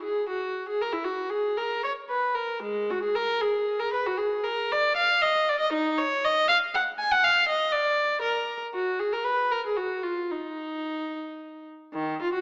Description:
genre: classical, baroque-style suite movement for unaccompanied viola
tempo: 117 BPM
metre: 3/4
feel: rubato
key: Eb minor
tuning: A4 = 440 Hz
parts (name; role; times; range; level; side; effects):
- warm viola; solo; 0.0-12.4 s; Eb3 to Ab5; -26 LUFS; equal; none
room: wet recital hall reverb, RT60 1.6 s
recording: small speaker sound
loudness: -26 LUFS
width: mono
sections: 0.0-11.9 A section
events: none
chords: none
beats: 0.04 0.56 | 1.08 1.59 2.10 | 2.63 3.16 3.67 | 4.19 4.71 5.22 | 5.72 6.23 6.74 | 7.24 7.74 8.24 | 8.75 9.26 9.77 | 10.30 10.84 11.38 | 11.93

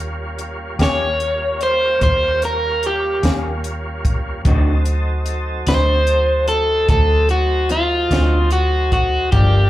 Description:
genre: slow blues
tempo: 49 BPM (dotted quarters)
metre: 12/8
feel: straight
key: unclear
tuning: A4 = 441 Hz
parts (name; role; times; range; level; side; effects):
- tonewheel organ; sustained chords; 0.0-9.7 s; F#3 to A4; -28 LUFS; right 1 dB; slow rotary speaker
- vintage muted fingered electric bass; bass; 0.0-9.7 s; G1 to Eb2; -19 LUFS; equal; none
- compact cocktail drum kit; drums; 0.4-9.5 s; hi-hat, kick drum, snare drum; -21 LUFS; equal; none
- crunchy overdriven guitar; melody; 0.8-9.7 s; F4 to Db5; -17 LUFS; equal; slapback echo
- electric guitar through a small old amp; accompaniment; 0.8-9.6 s; G2 to G4; -25 LUFS; left 2 dB; harmonic tremolo, slapback echo
room: little or no reverb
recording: live gig heard through the venue's PA, club reverb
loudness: -15 LUFS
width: side -15 dB against mid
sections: 0.0-9.7 A section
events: none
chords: 0.0 Eb7; 4.5 D7b9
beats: 0.80 2.02 3.23 | 4.45 5.67 6.89 8.11 | 9.34

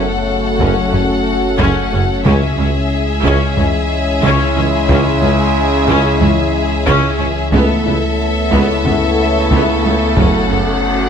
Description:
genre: cinematic, hybrid orchestral and electronic film score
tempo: 91 BPM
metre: 4/4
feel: straight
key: C# minor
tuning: A4 = 441 Hz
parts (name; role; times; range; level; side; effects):
- rich symphonic violin section; melody; 0.0-11.1 s; E5 to F#5; -22 LUFS; left 4 dB; none
- warm symphonic violin section; second line; 0.0-11.1 s; G#4 to A4; -22 LUFS; left 3 dB; none
- rich symphonic viola section; accompaniment; 0.0-10.6 s; B3 to C#4; -20 LUFS; left 1 dB; none
- bright trombone section; sustained chords; 0.0-11.1 s; C#3 to A3; -22 LUFS; right 5 dB; none
- dark French horn section; sustained chords; 0.0-11.1 s; B3 to F#4; -24 LUFS; left 5 dB; none
- dark analog pad; sustained chords; 0.0-11.1 s; G#3 to C#5; -22 LUFS; left 1 dB; chorus, phaser
- harp-like synth pluck; arpeggios; 0.0-10.7 s; C#3 to E4; -23 LUFS; left 2 dB; chorus, digital delay
- punchy sub bass; bass; 0.0-11.1 s; F#1 to C#2; -21 LUFS; left 1 dB; none
- rich symphonic cello section; bass; 0.0-10.6 s; C#2 to F#2; -22 LUFS; right 2 dB; none
- rich symphonic double bass section; bass; 0.0-10.6 s; F#1 to C#2; -21 LUFS; right 3 dB; none
- warm tuba; bass; 0.0-10.6 s; F#1 to C#2; -22 LUFS; right 5 dB; none
- taiko ensemble; drums; 0.6-10.8 s; none; -20 LUFS; left 1 dB; none
- reverse cymbal; sound effects; 10.5-11.1 s; none; -25 LUFS; right 1 dB; none
room: light reverb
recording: close, detailed microphones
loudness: -12 LUFS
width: side -7 dB against mid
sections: 0.0-11.1 A section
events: reverse cymbal 10.5-11.1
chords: 0.0 F#m; 2.3 C#m; 7.5 Aadd9/C#; 10.2 F#m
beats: 0.28 0.94 1.60 | 2.26 2.92 3.58 4.23 | 4.89 5.55 6.21 6.87 | 7.53 8.19 8.85 9.51 | 10.17 10.83

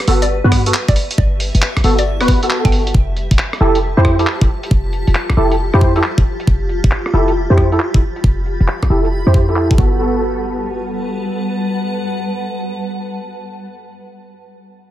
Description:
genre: UK garage, two-step garage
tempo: 136 BPM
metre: 4/4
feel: swing 66% on 16ths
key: G major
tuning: A4 = 441 Hz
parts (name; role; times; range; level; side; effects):
- breakbeat sampler-style drum kit; drums; 0.0-9.8 s; handclaps, hi-hat, rim click; -21 LUFS; equal; low-pass filter on hats, small room reverb, low-pass filter on snare
- granular cloud pad; texture; 0.0-14.2 s; G3 to B5; -24 LUFS; left 1 dB; built-in reverb, sidechain pumping
- percussive organ stab; stabs; 0.1-13.8 s; B3 to C5; -18 LUFS; right 1 dB; ensemble chorus, tape echo
- short 808-style bass; bass; 0.1-11.3 s; D1 to G2; -15 LUFS; equal; none
- mallet-like synth pluck; melody; 0.2-2.8 s; D5 to G5; -25 LUFS; left 1 dB; chorus, phaser, dub echo
- electronic kick drum; drums; 0.5-9.9 s; none; -15 LUFS; equal; overdrive, small room reverb
room: digital ambience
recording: none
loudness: -13 LUFS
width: side -13 dB against mid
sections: 0.0-10.0 A section; 10.0-13.5 B section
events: filter sweep on drum 0.0-10.0; filter sweep on 808-style bass 0.0-10.0; filter sweep on synth stab 0.0-10.0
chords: 0.0 Gmaj9; 2.9 Fmaj9; 9.8 Gmaj9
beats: 0.30 0.74 | 1.18 1.62 2.06 2.50 | 2.94 3.39 3.83 4.27 | 4.71 5.15 5.59 6.03 | 6.47 6.92 7.36 7.80 | 8.24 8.68 9.12 9.56 | 10.00 10.44 10.89 11.33 | 11.77 12.21 12.65 13.09

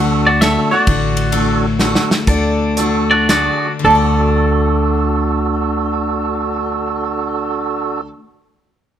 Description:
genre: honky-tonk and classic country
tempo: 106-132 BPM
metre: 3/4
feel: swing 65% on 8ths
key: D major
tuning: A4 = 440 Hz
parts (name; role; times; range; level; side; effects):
- lap resonator guitar; second line; 0.0-0.1, 3.8-8.1 s; F#4 to A4; -18 LUFS; right 3 dB; none
- picked steel-string acoustic guitar; accompaniment; 0.0-8.2 s; D3 to F#4; -20 LUFS; left 4 dB; none
- tonewheel organ; accompaniment; 0.0-8.0 s; D4 to A4; -20 LUFS; right 5 dB; overdrive, fast rotary speaker
- pedal steel guitar; sustained chords; 0.0-8.0 s; A4 to D5; -23 LUFS; left 2 dB; none
- upright bass; bass; 0.0-8.1 s; A1 to D2; -20 LUFS; right 1 dB; none
- twangy electric guitar; melody; 0.3-8.1 s; F#4 to E5; -17 LUFS; equal; none
- natural country drum kit; drums; 0.4-3.5 s; hi-hat, kick drum, ride cymbal, snare drum; -18 LUFS; equal; none
room: light reverb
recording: none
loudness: -13 LUFS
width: side -10 dB against mid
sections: 0.0-2.3 A section; 2.3-3.8 B section; 3.8-7.2 C section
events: slowing down 0.9-3.8; drum fill 1.8-2.3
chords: 0.0 D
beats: 0.42 | 0.88 1.33 1.80 | 2.27 2.77 3.29 | 3.84 4.41 4.98 | 5.54 6.11 6.68

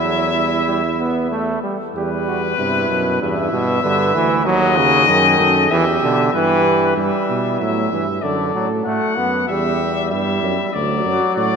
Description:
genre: classical, imitative canzona for brass ensemble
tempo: 96 BPM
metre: 4/4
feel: straight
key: E minor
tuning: A4 = 440 Hz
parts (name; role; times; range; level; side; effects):
- clear trumpet; melody; 0.0-11.6 s; B4 to F#5; -20 LUFS; left 6 dB; none
- mellow flugelhorn; second line; 0.0-11.6 s; E4 to B4; -24 LUFS; right 4 dB; none
- bright trombone; accompaniment; 0.0-11.6 s; G2 to B3; -20 LUFS; right 1 dB; none
- warm tuba; bass; 0.0-11.6 s; D2 to B2; -22 LUFS; right 2 dB; none
room: wet church reverb, RT60 3.0 s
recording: none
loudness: -15 LUFS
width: side -6 dB against mid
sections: 0.0-1.9 A section; 1.9-7.0 B section; 7.0-11.6 A section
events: none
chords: 0.0 Em; 4.5 D#dim; 5.7 Em; 7.0 Em/G; 8.2 D/F#; 9.5 Em; 10.7 Bm/D (rootless)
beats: 0.02 0.66 1.31 | 1.95 2.58 3.21 3.84 | 4.46 5.08 5.71 6.34 | 6.97 7.61 8.23 8.86 | 9.49 10.12 10.74 11.37

